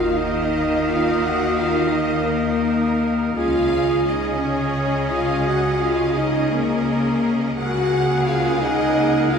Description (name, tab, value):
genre	cinematic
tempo	57 BPM (dotted quarters)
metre	6/8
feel	rubato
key	unclear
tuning	A4 = 439 Hz
part	warm symphonic violin section	melody	0.0-9.4 s	Eb5 to Gb5	-34 LUFS	left 2 dB	none
part	bright clarinet	second line	0.0-9.4 s	Ab4 to Bb4	-31 LUFS	right 1 dB	none
part	clear symphonic violin section	second line	0.0-9.4 s	Bb4 to Gb5	-31 LUFS	left 2 dB	none
part	concert flute	second line	0.0-9.4 s	F5 to Ab5	-32 LUFS	equal	none
part	warm oboe	second line	0.0-9.4 s	Eb5 to Gb5	-30 LUFS	right 2 dB	none
part	clear symphonic viola section	accompaniment	0.0-9.4 s	Bb3 to Ab4	-28 LUFS	right 1 dB	none
part	mellow French horn section	sustained chords	0.0-9.4 s	Bb3 to Gb4	-21 LUFS	left 2 dB	none
part	rich symphonic cello section	bass	0.0-9.4 s	Db3 to Eb3	-27 LUFS	right 3 dB	none
part	rich symphonic double bass section	bass	0.0-9.4 s	Db2 to Eb2	-28 LUFS	right 4 dB	none
room	wet concert hall reverb, RT60 2.5 s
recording	recorded in a church or concert hall, faint mains hum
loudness	-18 LUFS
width	side -6 dB against mid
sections	0.0-9.4 A section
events	none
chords	0.0 Ebsus2; 3.4 Dbsus2